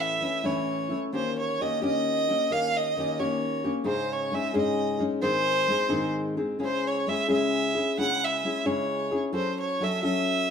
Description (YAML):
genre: mexican folk, mariachi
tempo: 88 BPM (dotted quarters)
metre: 6/8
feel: straight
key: C# harmonic minor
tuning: A4 = 440 Hz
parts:
  - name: warm violin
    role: melody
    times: 0.0-10.5 s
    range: B#4 to F#5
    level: -27 LUFS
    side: right 2 dB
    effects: none
  - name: nylon-string guitar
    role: accompaniment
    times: 0.0-10.5 s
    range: G#2 to A4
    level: -27 LUFS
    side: left 3 dB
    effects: none
room: wet studio reverb, RT60 0.8 s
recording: band playing live in one room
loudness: -24 LUFS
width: side -7 dB against mid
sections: 0.0-10.5 A section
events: none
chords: 0.0 A; 1.1 D#7; 3.9 G#sus4; 5.2 G#; 6.6 C#m; 9.3 F#m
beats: 0.43 | 1.13 1.82 | 2.50 3.18 | 3.86 4.54 | 5.23 5.91 | 6.60 7.29 | 7.98 8.65 | 9.33 10.02